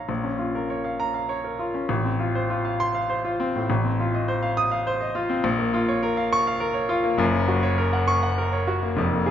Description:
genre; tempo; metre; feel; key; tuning
classical, virtuoso piano study; 101 BPM; 3/4; rubato; unclear; A4 = 438 Hz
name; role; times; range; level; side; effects
clear baby grand piano; solo; 0.0-9.3 s; F1 to Eb6; -21 LUFS; equal; none
room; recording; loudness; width
wet recital hall reverb, RT60 1.7 s; nothing above 7.7 kHz; -21 LUFS; side -9 dB against mid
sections
0.1-9.3 A section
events
none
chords
0.1 Bbm; 1.9 F/A; 3.7 F7/A; 5.4 Bbm; 7.2 Gb

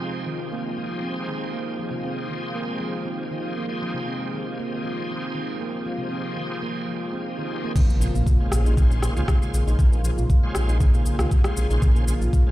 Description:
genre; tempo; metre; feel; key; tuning
afro house; 118 BPM; 4/4; swing 54% on 16ths; unclear; A4 = 440 Hz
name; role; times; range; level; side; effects
warm analog pad; sustained chords; 0.0-12.5 s; Db3 to F4; -34 LUFS; left 1 dB; chorus, sidechain pumping
handpan; arpeggios; 0.0-12.5 s; C3 to F4; -30 LUFS; right 1 dB; sidechain pumping, digital delay
bright tonewheel organ; stabs; 0.0-12.5 s; F3 to C5; -33 LUFS; right 1 dB; chorus vibrato, slow rotary speaker, sidechain pumping, digital delay
dark detuned saw bass; bass; 7.8-12.3 s; Bb1 to Db2; -21 LUFS; equal; sidechain pumping
afro-pop drum kit; drums; 7.8-12.4 s; crash cymbal, rim click, shaker; -32 LUFS; left 1 dB; low-pass filter on cymbals, small room ambience, low-pass filter on perc, low-pass filter on snare
electronic kick drum; drums; 7.8-12.4 s; none; -18 LUFS; equal; small room ambience
impact; sound effects; 7.8-9.8 s; none; -29 LUFS; equal; none
room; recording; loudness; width
digital ambience; played on a big sound system in a bare room, large studio reverb; -21 LUFS; side -16 dB against mid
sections
0.0-7.8 A section; 7.8-12.5 B section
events
drop 7.8-12.5; impact 7.8-9.8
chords
0.0 Fm7; 7.8 Bbm7

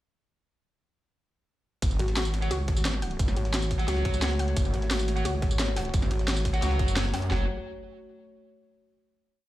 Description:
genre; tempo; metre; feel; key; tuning
dark technical drum and bass; 175 BPM; 4/4; straight; F# minor; A4 = 443 Hz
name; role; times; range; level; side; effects
dark analog pad; sustained chords; 2.1-7.5 s; A3 to C#5; -36 LUFS; equal; chorus, sidechain pumping
wide detuned saw bass; bass; 1.8-7.5 s; F#1 to F#2; -28 LUFS; equal; chorus, overdrive, sidechain pumping
breakbeat sampler-style drum kit; drums; 1.8-7.2 s; hi-hat, ride cymbal, snare drum; -41 LUFS; equal; high-pass filter on cymbals, high-pass filter on snare, high-pass filter on hats, high-pass filter on room
drum and bass drum kit; drums; 1.8-7.4 s; handclaps, kick drum, snare drum, toms; -28 LUFS; equal; none
drum and bass drum kit; drums; 1.8-7.3 s; hi-hat, snare drum, tambourine; -32 LUFS; equal; none
warbly dusty pluck; arpeggios; 2.0-7.5 s; F#4 to F#5; -37 LUFS; left 3 dB; chorus, sidechain pumping, ping-pong delay
pulsing pluck wobble bass; bass; 2.0-6.6 s; G#1 to C#2; -28 LUFS; equal; chorus, tube saturation
fuzz guitar; stabs; 2.4-7.4 s; F#4 to F#5; -35 LUFS; right 1 dB; distortion, ping-pong delay
room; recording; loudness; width
little or no reverb; played on a big sound system in a bare room, large studio reverb; -24 LUFS; side -15 dB against mid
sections
1.8-7.3 drop; 7.3-8.7 final chord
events
drop 1.8-7.3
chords
1.8 F#m

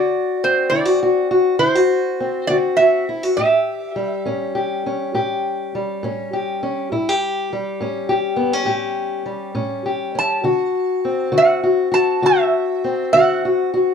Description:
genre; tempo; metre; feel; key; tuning
acoustic country blues, solo or duo; 68 BPM (dotted quarters); 12/8; straight; unclear; A4 = 440 Hz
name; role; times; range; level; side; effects
metal-body resonator slide guitar; melody; 0.0-4.2, 10.2-13.9 s; C5 to A5; -18 LUFS; right 3 dB; none
fingerpicked steel-string acoustic guitar; accompaniment; 0.0-13.9 s; A2 to G4; -18 LUFS; left 3 dB; none
room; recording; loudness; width
wet studio reverb, RT60 0.6 s; dark, warm production; -16 LUFS; side -7 dB against mid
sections
0.0-13.9 A section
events
none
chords
0.0 D7; 3.4 A7; 10.5 D7

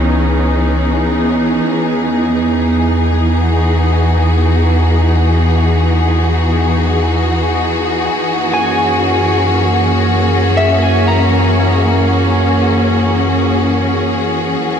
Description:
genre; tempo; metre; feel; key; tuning
ambient; free time; none; none; unclear; A4 = 440 Hz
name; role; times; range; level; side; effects
clear studio string section; sustained chords; 0.0-14.8 s; E3 to G#4; -13 LUFS; equal; none
warm sub bass; bass; 0.0-14.8 s; C#2 to F#2; -15 LUFS; equal; none
twelve-string electric guitar; arpeggios; 8.5-12.5 s; E5 to A#5; -19 LUFS; left 1 dB; diffuse ambient delay
room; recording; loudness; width
wet lush hall reverb, RT60 2.7 s; dark, warm production; -11 LUFS; side -8 dB against mid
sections
0.0-14.8 A section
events
none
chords
0.0 C#m9; 1.6 Emaj9; 8.1 F#9

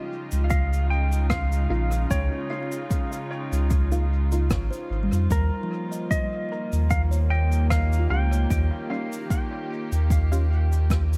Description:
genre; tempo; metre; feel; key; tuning
ambient dub; 75 BPM; 4/4; swing 55% on 16ths; Eb mixolydian; A4 = 440 Hz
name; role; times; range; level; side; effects
clean lap steel guitar; melody; 0.0-8.9 s; Bb4 to G5; -35 LUFS; equal; tape echo
warm studio string section; sustained chords; 0.0-11.2 s; Db3 to G4; -35 LUFS; equal; none
kalimba; arpeggios; 0.0-10.6 s; F3 to Eb6; -38 LUFS; equal; vintage 12-bit sampler grit, tape echo
warm sub bass; bass; 0.3-11.2 s; Ab1 to F2; -24 LUFS; equal; tube saturation
cabasa and rim click; drums; 0.3-11.2 s; none; -40 LUFS; equal; dub echo
electronic kick drum; drums; 0.5-11.1 s; none; -28 LUFS; equal; overdrive
filtered dub chord stab; stabs; 1.7-10.5 s; G3 to F4; -39 LUFS; equal; none
room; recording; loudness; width
light reverb, small room reverb; vinyl crackle; -24 LUFS; mono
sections
0.0-11.2 A section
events
none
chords
0.0 Db69; 5.3 Eb9

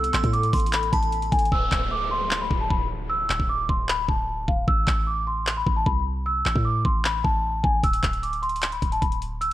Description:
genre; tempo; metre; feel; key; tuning
hip hop, trap; 152 BPM; 4/4; half-time; unclear; A4 = 440 Hz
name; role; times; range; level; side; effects
large celesta; melody; 0.0-9.5 s; F5 to E6; -25 LUFS; equal; low-pass filter
warbly tape-like pad; sustained chords; 0.0-1.5 s; B3 to A4; -36 LUFS; left 1 dB; chorus, built-in reverb
warm 808-style bass; bass; 0.0-9.5 s; D1 to A2; -28 LUFS; equal; none
trap drum kit; drums; 0.0-9.5 s; handclaps, hi-hat, kick drum; -25 LUFS; equal; none
delicate synth tine bell; second line; 0.1-1.1 s; B5 to C6; -34 LUFS; right 4 dB; chorus, phaser, ping-pong delay
downlifter; sound effects; 1.5-4.7 s; none; -35 LUFS; equal; none
room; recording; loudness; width
little or no reverb; worn, warbling old tape, cassette tape, warbly pitch drift; -21 LUFS; side -14 dB against mid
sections
0.0-1.5 A section; 1.5-9.5 B section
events
hi-hats muted 1.5-7.8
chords
0.0 Asus2; 1.5 Dsus2; 4.7 A5; 7.8 Dsus2

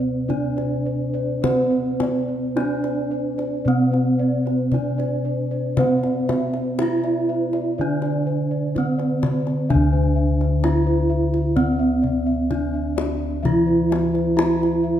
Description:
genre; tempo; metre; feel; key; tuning
Javanese gamelan; 52-64 BPM; 4/4; straight; unclear; A4 = 439 Hz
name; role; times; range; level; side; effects
gamelan-type bronze metallophone; melody; 0.0-15.0 s; C4-45c to E4+30c; -23 LUFS; right 1 dB; none
gamelan-type bronze metallophone; accompaniment; 0.0-15.0 s; D3 to C4-45c; -26 LUFS; right 4 dB; none
gamelan-type bossed gongs; arpeggios; 0.0-15.0 s; C5-45c to E5+30c; -31 LUFS; left 7 dB; none
gamelan-type bronze metallophone; arpeggios; 0.0-9.7 s; C5-45c to E5+30c; -31 LUFS; right 2 dB; none
gamelan-type bossed gongs; bass; 0.0-15.0 s; D2 to C5-45c; -24 LUFS; left 1 dB; none
kendang; percussion; 0.3-14.7 s; none; -28 LUFS; left 3 dB; none
room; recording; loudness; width
moderate recital hall reverb, RT60 1.7 s; dark, warm production; -18 LUFS; side -10 dB against mid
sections
0.0-9.7 A section; 9.7-15.0 B section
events
none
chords
none

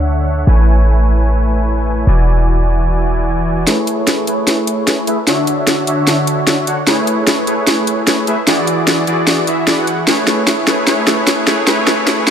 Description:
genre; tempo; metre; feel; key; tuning
future bass; 150 BPM; 4/4; half-time; A major; A4 = 440 Hz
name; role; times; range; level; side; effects
soft supersaw; riff; 0.0-12.3 s; D3 to G#5; -15 LUFS; equal; low-pass filter, tape echo
warm 808-style bass; bass; 0.0-3.7 s; E1 to D2; -12 LUFS; equal; none
trap drum kit; drums; 3.7-12.3 s; hi-hat, snare drum; -15 LUFS; equal; overdrive
room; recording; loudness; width
light reverb; high-pass filter; -12 LUFS; side -8 dB against mid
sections
0.0-3.7 A section; 3.7-12.3 B section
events
build-up 3.7-12.3; drum fill 3.7-12.3; filter sweep on supersaw synth 3.7-12.3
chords
0.5 Amaj7; 2.1 E7; 3.7 Amaj7; 5.3 Dmaj7; 6.9 Amaj7; 8.5 E7; 10.1 Amaj9

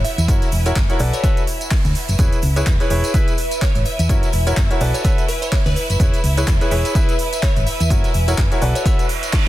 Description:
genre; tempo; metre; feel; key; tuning
piano house; 126 BPM; 4/4; swing 57% on 16ths; E major; A4 = 438 Hz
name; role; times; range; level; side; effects
glassy wavetable pluck; melody; 0.0-8.9 s; B4 to E5; -29 LUFS; equal; chorus, cassette tape, tape echo
bright studio violin section; sustained chords; 0.0-9.5 s; E4 to E5; -30 LUFS; right 1 dB; sidechain pumping
hollow-body short-scale fingered electric bass; bass; 0.0-8.7 s; E1 to E2; -19 LUFS; equal; sidechain pumping
garage drum kit; drums; 0.0-9.4 s; handclaps, hi-hat, snare drum, tambourine; -27 LUFS; right 1 dB; soft clipping on snare
open jazz drum kit; drums; 0.0-9.5 s; hi-hat, shaker, snare drum; -35 LUFS; right 2 dB; none
granular cloud pad; texture; 0.0-9.5 s; B4 to E5; -29 LUFS; right 1 dB; built-in reverb, sidechain pumping
clear baby grand piano; riff; 0.3-9.0 s; E4 to E5; -24 LUFS; left 1 dB; sidechain pumping, tape echo
electronic kick drum; drums; 0.3-9.4 s; none; -18 LUFS; equal; none
reverse cymbal; sound effects; 9.0-9.5 s; none; -25 LUFS; right 6 dB; none
room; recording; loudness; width
little or no reverb; dense, heavily limited modern master; -15 LUFS; side -15 dB against mid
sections
0.0-9.5 A section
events
reverse cymbal 9.0-9.5; drum fill 9.3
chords
0.3 F#7; 1.0 Bm7; 2.2 E6; 4.1 F#7; 4.8 Bm7; 6.0 E6; 7.9 F#7; 8.6 Bm7

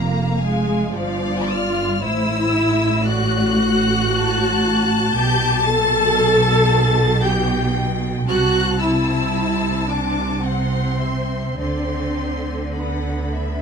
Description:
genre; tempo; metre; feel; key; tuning
classical, slow romantic movement for string orchestra; 56 BPM; 3/4; uneven beats, rubato; unclear; A4 = 440 Hz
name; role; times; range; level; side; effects
warm studio violin section; melody; 0.0-13.6 s; F5 to A6; -25 LUFS; left 2 dB; none
warm studio violin section; second line; 0.0-13.6 s; C5 to A5; -25 LUFS; left 3 dB; none
warm studio viola section; accompaniment; 0.0-13.6 s; F3 to A4; -22 LUFS; equal; none
rich studio cello section; bass; 0.0-13.6 s; F2 to D3; -23 LUFS; equal; none
warm studio double bass section; bass; 0.0-13.6 s; F1 to D2; -23 LUFS; right 3 dB; none
room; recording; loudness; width
light reverb; dark, warm production; -16 LUFS; side -6 dB against mid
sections
0.0-13.6 A section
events
none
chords
0.0 Fm; 2.0 A5; 5.1 G/B; 8.3 Am/C; 11.6 D13

